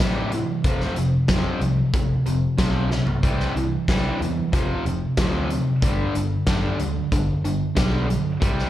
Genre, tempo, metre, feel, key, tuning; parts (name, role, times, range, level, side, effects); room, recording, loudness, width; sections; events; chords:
classic rock; 93 BPM; 4/4; straight; G mixolydian; A4 = 441 Hz
distorted electric guitar; riff; 0.0-8.7 s; F2 to G3; -23 LUFS; equal; distortion
fingered electric bass; bass; 0.0-8.6 s; F1 to A2; -26 LUFS; equal
huge arena drum kit; drums; 0.0-8.7 s; hi-hat, kick drum, snare drum, toms; -24 LUFS; equal
little or no reverb; live gig heard through the venue's PA, club reverb; -20 LUFS; side -13 dB against mid
0.0-8.7 A section
drum fill 2.9-3.2
0.0 C; 0.6 F5; 3.2 C; 4.5 F5; 5.8 G